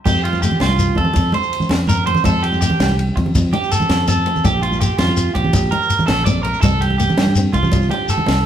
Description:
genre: highlife guitar band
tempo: 110 BPM (dotted quarters)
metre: 12/8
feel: straight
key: F major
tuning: A4 = 439 Hz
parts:
  - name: flamenco guitar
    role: accompaniment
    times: 0.1-8.2 s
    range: A3 to D4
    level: -29 LUFS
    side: left 5 dB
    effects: none
  - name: electric guitar at the edge of break-up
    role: arpeggios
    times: 0.1-8.4 s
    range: F4 to D5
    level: -20 LUFS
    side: right 4 dB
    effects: none
  - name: fingered electric bass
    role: bass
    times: 0.1-8.5 s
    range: Bb1 to G2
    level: -19 LUFS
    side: equal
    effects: none
  - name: compact cocktail drum kit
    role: drums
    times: 0.1-8.4 s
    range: crash cymbal, kick drum, ride cymbal, snare drum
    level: -23 LUFS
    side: equal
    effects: none
  - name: congas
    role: percussion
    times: 0.1-8.4 s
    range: none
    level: -22 LUFS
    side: right 1 dB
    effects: none
  - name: shekere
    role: percussion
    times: 0.1-8.2 s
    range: none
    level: -22 LUFS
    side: left 2 dB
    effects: none
room: wet large studio reverb, RT60 1.3 s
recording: band playing live in one room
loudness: -14 LUFS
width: side -10 dB against mid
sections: 0.1-8.5 A section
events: none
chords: 0.1 F; 4.4 Bb6; 6.6 Csus2

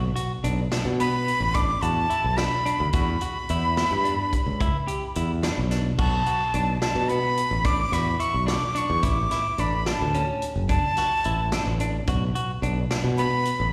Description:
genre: progressive instrumental, band music in an uneven meter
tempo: 217 BPM (eighths)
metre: 11/8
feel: straight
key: B minor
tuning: A4 = 441 Hz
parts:
  - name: clean electric guitar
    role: arpeggios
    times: 0.0-13.5 s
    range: B3 to G4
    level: -33 LUFS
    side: equal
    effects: spring reverb, slapback echo
  - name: modern bright fingered electric bass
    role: bass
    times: 0.0-13.7 s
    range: F#1 to B2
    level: -28 LUFS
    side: equal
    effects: none
  - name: swinging big-band drum kit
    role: drums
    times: 0.2-13.6 s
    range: crash cymbal, hi-hat, kick drum, snare drum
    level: -31 LUFS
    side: equal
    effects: none
  - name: breathy bright jazz flute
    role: melody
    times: 1.0-13.7 s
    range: A5 to D6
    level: -28 LUFS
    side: equal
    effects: slapback echo
room: light reverb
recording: live gig heard through the venue's PA, recital hall reverb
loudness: -24 LUFS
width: mono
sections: 0.0-6.0 A section; 6.0-13.7 A section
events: none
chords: 0.0 Bm7; 2.9 Em; 6.0 Bm7; 9.0 Asus4; 12.1 Bm

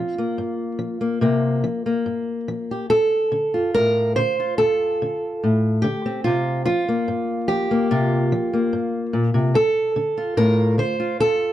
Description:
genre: folk, solo fingerstyle acoustic guitar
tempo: 72 BPM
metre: 4/4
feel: straight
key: D minor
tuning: A4 = 440 Hz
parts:
  - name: fingerpicked acoustic archtop guitar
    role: solo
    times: 0.0-11.5 s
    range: D2 to C5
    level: -19 LUFS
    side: equal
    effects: none
room: light reverb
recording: dark, warm production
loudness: -19 LUFS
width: side -12 dB against mid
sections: 0.0-2.9 A section; 2.9-11.5 A section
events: none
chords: 0.0 C7sus4; 2.9 Dm7; 6.2 C7sus4; 9.5 Dm7

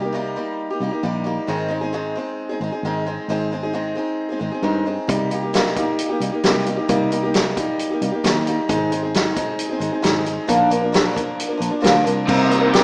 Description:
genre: folk rock and heartland rock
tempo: 133 BPM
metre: 4/4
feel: straight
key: C minor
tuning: A4 = 444 Hz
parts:
  - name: picked acoustic archtop guitar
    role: accompaniment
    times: 0.0-12.8 s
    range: Ab2 to Bb4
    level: -20 LUFS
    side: equal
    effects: none
  - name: picked electric bass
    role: bass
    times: 0.0-12.8 s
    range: Ab1 to G2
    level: -25 LUFS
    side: equal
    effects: none
  - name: vintage drum kit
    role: drums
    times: 5.1-12.8 s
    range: crash cymbal, hi-hat, kick drum, snare drum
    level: -21 LUFS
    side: equal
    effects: none
  - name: tonewheel organ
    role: sustained chords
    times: 12.3-12.8 s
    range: C5 to Eb6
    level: -25 LUFS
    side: equal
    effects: slow rotary speaker
  - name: crunchy overdriven guitar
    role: riff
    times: 12.3-12.8 s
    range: C3 to G4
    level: -16 LUFS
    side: equal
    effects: none
room: moderate lush hall reverb, RT60 2.2 s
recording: rough home demo mix, small speaker sound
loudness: -18 LUFS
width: side -36 dB against mid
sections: 0.0-12.3 A section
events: none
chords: 0.0 Cm7; 1.5 Ab; 5.1 Cm7; 8.7 Ab; 10.5 Bb; 12.3 Cm7

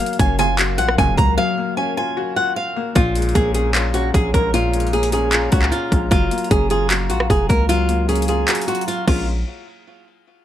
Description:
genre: hip hop, trap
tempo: 152 BPM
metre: 4/4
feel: half-time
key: Bb minor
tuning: A4 = 440 Hz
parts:
  - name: flamenco guitar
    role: melody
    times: 0.0-9.3 s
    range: F4 to Bb5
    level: -21 LUFS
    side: right 1 dB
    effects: none
  - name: felt-muted upright piano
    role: accompaniment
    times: 0.0-9.3 s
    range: Bb2 to Gb4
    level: -25 LUFS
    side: left 8 dB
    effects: none
  - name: dark analog pad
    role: sustained chords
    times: 0.0-9.3 s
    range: Gb3 to Bb5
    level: -29 LUFS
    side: right 1 dB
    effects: chorus
  - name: trap drum kit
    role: drums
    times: 0.0-9.2 s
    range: crash cymbal, handclaps, hi-hat, kick drum, rim click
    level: -20 LUFS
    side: equal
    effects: overdrive
  - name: hard-hitting 808-style bass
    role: bass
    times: 0.2-9.4 s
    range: F1 to Db2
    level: -21 LUFS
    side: equal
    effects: none
  - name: funky polysynth comp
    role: stabs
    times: 0.4-1.3 s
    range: Gb2 to Db3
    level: -25 LUFS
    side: right 1 dB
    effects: chorus, ping-pong delay
room: little or no reverb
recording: none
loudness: -16 LUFS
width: side -11 dB against mid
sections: 0.0-3.0 A section; 3.0-9.3 B section; 9.3-10.4 C section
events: break 1.4-3.0; kick muted 8.5-9.3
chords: 0.0 Gbmaj7; 3.0 Bbm7; 6.1 Gbmaj7; 9.1 Bbm7; 9.3 N.C.

